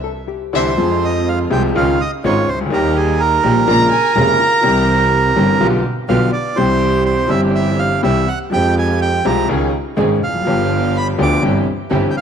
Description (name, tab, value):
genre	tango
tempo	124 BPM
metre	4/4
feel	rubato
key	F minor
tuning	A4 = 439 Hz
part	hollow-body jazz guitar	second line	0.0-5.6 s	F4 to Bb4	-27 LUFS	left 9 dB	none
part	bright upright piano	accompaniment	0.5-12.1 s	F1 to Ab4	-17 LUFS	left 2 dB	none
part	dark studio string section	stabs	0.5-12.1 s	Ab3 to Ab4	-25 LUFS	right 10 dB	tape echo
part	rich double bass	bass	0.5-12.1 s	F1 to F2	-20 LUFS	right 2 dB	none
part	bandoneon	melody	0.6-12.2 s	Ab4 to D6	-18 LUFS	right 5 dB	none
part	warm violin	second line	0.6-0.7, 3.7-5.1 s	E5 to Bb5	-21 LUFS	left 6 dB	none
room	moderate echo chamber reverb, RT60 2.0 s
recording	1960s-style stereo with parts hard left and right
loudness	-13 LUFS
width	side -7 dB against mid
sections	0.8-12.2 A section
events	band accent 0.0-0.8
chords	0.0 Cadd9; 0.8 Fm; 1.8 Dbadd9; 2.7 Eb; 3.7 Bbm7; 4.6 C; 5.6 G7/B; 6.6 C; 8.5 Fmadd9; 9.5 Dbsus2; 10.5 G7; 11.4 C/G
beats	0.29 | 0.79 1.27 1.76 2.24 | 2.73 3.21 3.68 4.16 | 4.64 5.12 5.60 6.09 | 6.57 7.05 7.54 8.03 | 8.52 9.01 9.49 9.98 | 10.46 10.95 11.43 11.91